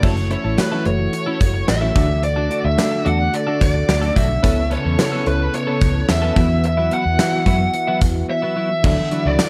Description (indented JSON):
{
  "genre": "1980s-style pop",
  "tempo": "109 BPM",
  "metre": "4/4",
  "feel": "straight",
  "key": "unclear",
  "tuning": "A4 = 440 Hz",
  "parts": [
    { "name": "bluesy overdriven lead guitar", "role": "melody", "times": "0.0-9.5 s", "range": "B4 to F#5", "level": "-25 LUFS", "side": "equal", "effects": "distortion, tape echo" },
    { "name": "FM electric piano with tremolo", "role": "accompaniment", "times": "0.0-9.5 s", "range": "C#3 to E5", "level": "-27 LUFS", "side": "equal", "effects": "none" },
    { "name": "lush unison pad", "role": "sustained chords", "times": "0.0-9.5 s", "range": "C#3 to A4", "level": "-29 LUFS", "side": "equal", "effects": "chorus" },
    { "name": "twelve-string electric guitar", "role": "riff", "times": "0.0-9.4 s", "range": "F#3 to A4", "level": "-29 LUFS", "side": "equal", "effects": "analog chorus, tape echo" },
    { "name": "vintage muted fingered electric bass", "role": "bass", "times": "0.0-9.4 s", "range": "F#1 to F#2", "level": "-23 LUFS", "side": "equal", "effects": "none" },
    { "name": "gated 80s drum kit", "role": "drums", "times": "0.0-9.5 s", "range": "crash cymbal, hi-hat, kick drum, snare drum, tambourine", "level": "-21 LUFS", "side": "equal", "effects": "none" },
    { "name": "tambourine", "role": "percussion", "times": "0.6-9.5 s", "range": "none", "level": "-41 LUFS", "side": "equal", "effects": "none" }
  ],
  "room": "little or no reverb",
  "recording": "none",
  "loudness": "-18 LUFS",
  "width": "mono",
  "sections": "0.0-8.8 A section",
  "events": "none",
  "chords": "0.0 F#m7; 2.0 D; 4.4 Aadd9/C#; 6.4 Esus2; 8.8 Dadd9",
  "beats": "| 0.03 0.58 1.13 1.68 | 2.23 2.79 3.34 3.89 | 4.44 4.99 5.54 6.09 | 6.64 7.19 7.74 8.29 | 8.84 9.39"
}